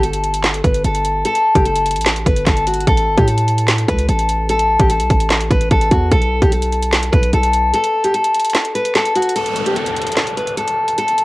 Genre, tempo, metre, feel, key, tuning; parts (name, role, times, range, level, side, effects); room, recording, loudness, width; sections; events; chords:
hip hop, trap; 148 BPM; 4/4; half-time; A4 = 439 Hz
picked steel-string acoustic guitar; melody; 0.0-11.2 s; F#4 to B4; -16 LUFS; left 1 dB; low-pass filter, cassette tape
hard-hitting 808-style bass; bass; 0.0-7.7 s; F#1 to A2; -18 LUFS; right 1 dB
trap drum kit; drums; 0.0-11.2 s; handclaps, hi-hat, kick drum, snare drum; -17 LUFS; right 1 dB; cassette tape
downlifter; sound effects; 9.4-11.2 s; -24 LUFS; equal
little or no reverb; home recording on cassette; -13 LUFS; side -19 dB against mid
0.0-9.4 A section; 9.4-11.2 B section
kick muted 7.7-9.4; break 9.4-11.2
0.0 Gsus2; 2.9 N.C.; 6.1 Gadd9/B (rootless); 9.4 N.C.